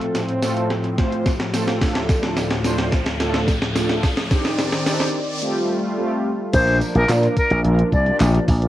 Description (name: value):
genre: dance-pop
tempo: 108 BPM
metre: 4/4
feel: straight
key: Bb major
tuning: A4 = 441 Hz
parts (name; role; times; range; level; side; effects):
- mellow synth brass; accompaniment; 0.0-8.7 s; F3 to C5; -25 LUFS; right 1 dB; chorus, cassette tape
- warm analog pad; sustained chords; 0.0-8.7 s; D2 to D5; -25 LUFS; left 1 dB; chorus, sidechain pumping, cassette tape
- gated 80s digital drum machine; drums; 0.0-8.7 s; crash cymbal, handclaps, hi-hat, kick drum, snare drum; -22 LUFS; equal; gated reverb, gated reverb snare
- riser; sound effects; 0.1-5.4 s; none; -32 LUFS; equal; none
- tambourine; percussion; 0.1-8.6 s; none; -38 LUFS; right 6 dB; none
- bright silver concert flute; melody; 6.5-8.2 s; Bb4 to D5; -21 LUFS; left 1 dB; sidechain pumping, tape echo
- slap bass with an envelope filter; bass; 6.5-8.7 s; Bb1 to Bb2; -17 LUFS; equal; sidechain pumping
room: little or no reverb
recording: home recording on cassette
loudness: -17 LUFS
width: side -14 dB against mid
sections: 0.0-6.5 A section; 6.5-8.7 B section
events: build-up 0.0-6.5; drum fill 0.0-5.4; riser 0.1-6.5; drop 6.5-8.7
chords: 0.0 F/A; 1.8 Dm; 4.3 Cmadd9; 5.4 Fadd9; 6.5 Bb